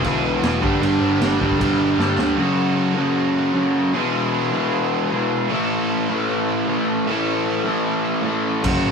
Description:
punk rock; 153 BPM; 4/4; straight; A major; A4 = 439 Hz
distorted electric guitar; riff; 0.0-8.9 s; E3 to A4; -25 LUFS; right 7 dB; overdrive
high-gain distorted guitar; riff; 0.0-8.9 s; E3 to A4; -29 LUFS; right 2 dB; distortion
overdriven semi-hollow guitar; riff; 0.0-8.9 s; E2 to A3; -19 LUFS; left 2 dB
overdriven picked electric bass; bass; 0.0-2.4, 8.6-8.9 s; E1 to G2; -27 LUFS; right 1 dB
raw garage drum kit; drums; 0.0-2.3, 8.6-8.7 s; crash cymbal, kick drum, snare drum; -25 LUFS; right 1 dB
moderate studio reverb, RT60 0.5 s; rough rehearsal-room recording; -18 LUFS; side -5 dB against mid
0.0-2.4 A section; 2.4-8.9 B section
drum fill 2.0-2.4; half time 2.4-8.9
0.0 E; 0.6 G; 2.4 F#m; 3.9 E; 5.5 A

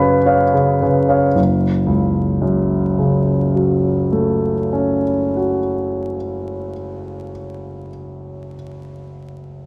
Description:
classical, romantic character piece for solo piano; 40 BPM (dotted quarters); 6/8; rubato; F# minor; A4 = 443 Hz
warm concert grand piano; solo; 0.0-9.7 s; F#1 to B5; -18 LUFS; equal
moderate recital hall reverb, RT60 1.8 s; vinyl crackle; -17 LUFS; mono
0.0-1.4 A section; 1.4-7.4 B section
slowing down 0.0-1.4
0.0 C#7/F#; 1.4 F#m

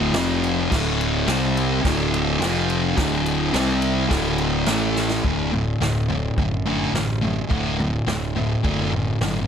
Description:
garage rock duo or trio; 106 BPM; 4/4; straight; D major from 5.2 s; A4 = 440 Hz
thick fuzz guitar; riff; 0.0-9.5 s; D2 to C4; -21 LUFS; equal; distortion
fuzz picked electric bass; bass; 0.0-9.5 s; D1 to C2; -26 LUFS; equal; overdrive
vintage drum kit; drums; 0.1-9.3 s; crash cymbal, kick drum, ride cymbal, snare drum, toms; -27 LUFS; equal
light reverb; -19 LUFS; side -8 dB against mid
0.0-5.2 A section; 5.2-9.5 B section
drum fill 5.0
0.2 F5; 0.7 D5; 1.3 C5; 1.8 D5; 2.4 F5; 3.0 D5; 3.5 C5; 4.1 D5; 4.7 A5; 5.2 D

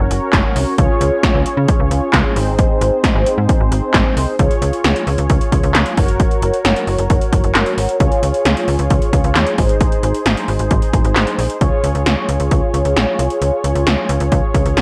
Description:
synth-pop; 133 BPM; 4/4; straight; Db major; A4 = 439 Hz
mellow synth brass; accompaniment; 0.0-14.8 s; C4 to Db5; -21 LUFS; equal; chorus, phaser
slap-like FM bass; bass; 0.0-14.8 s; Gb1 to Db3; -20 LUFS; equal
80s electronic pad drums; drums; 0.1-14.8 s; handclaps, hi-hat, kick drum, snare drum; -18 LUFS; equal
light reverb; dry, gritty hardware recording, cassette tape; -15 LUFS; mono
0.0-4.4 A section; 4.4-11.6 B section; 11.6-14.8 C section
0.0 Gb; 0.8 Db; 2.4 Ab; 4.4 Db; 6.0 Gb; 8.0 Db; 9.6 Ab; 11.6 Db

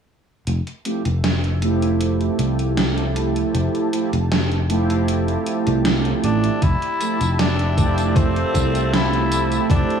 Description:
vaporwave; 78 BPM; 4/4; straight; F major; A4 = 440 Hz
lush unison pad; sustained chords; 1.2-10.0 s; G4 to A5; -32 LUFS; left 1 dB; chorus, phaser
sustaining fretless electric bass; bass; 0.5-9.8 s; F1 to C2; -21 LUFS; equal
gated 80s digital drum machine; drums; 0.5-10.0 s; hi-hat, snare drum, tambourine; -25 LUFS; right 1 dB; gated reverb, gated reverb snare, overdrive
mellow synth brass; accompaniment; 0.8-10.0 s; F3 to G4; -22 LUFS; right 3 dB; wide subtle chorus, analog delay
raspy tenor saxophone; melody; 6.2-10.0 s; C4 to E4; -23 LUFS; left 2 dB; vintage 12-bit sampler grit, tape echo
electronic kick drum; drums; 6.6-9.9 s; -20 LUFS; equal; overdrive
light reverb; -17 LUFS; side -7 dB against mid
0.5-6.6 A section; 6.6-10.0 B section
0.5 Fmaj9

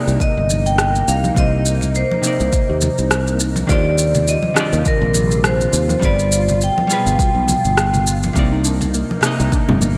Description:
sunset chillout; 103 BPM; 4/4; swing 56% on 16ths; C minor; A4 = 439 Hz
vibraphone with medium hard mallets; melody; 0.0-8.0 s; Bb4 to G5; -22 LUFS; equal; digital delay
archtop guitar, miked and amplified; accompaniment; 0.0-10.0 s; C3 to Eb5; -26 LUFS; equal; low-pass filter, delay
soft string machine; sustained chords; 0.0-10.0 s; B2 to F4; -28 LUFS; equal; phaser, ensemble chorus, vintage 12-bit sampler grit
sustaining fretless electric bass; bass; 0.1-10.0 s; G1 to Eb2; -21 LUFS; equal; analog chorus
electronic shaker, rim click and congas; drums; 0.1-9.9 s; -24 LUFS; equal
electronic kick drum; drums; 0.2-9.7 s; -20 LUFS; equal
congas; percussion; 0.5-9.9 s; -28 LUFS; equal
soft round pluck; arpeggios; 8.4-10.0 s; Bb3 to Eb4; -26 LUFS; equal; chorus, delay
moderate lush hall reverb, RT60 2.3 s; bright 1980s-style digital production; -17 LUFS; mono
0.0-10.0 A section
filter sweep on hollow-body jazz guitar 0.0-10.0
0.0 Cm9; 3.7 Ebmaj13; 6.0 G7b9; 8.4 Cm9

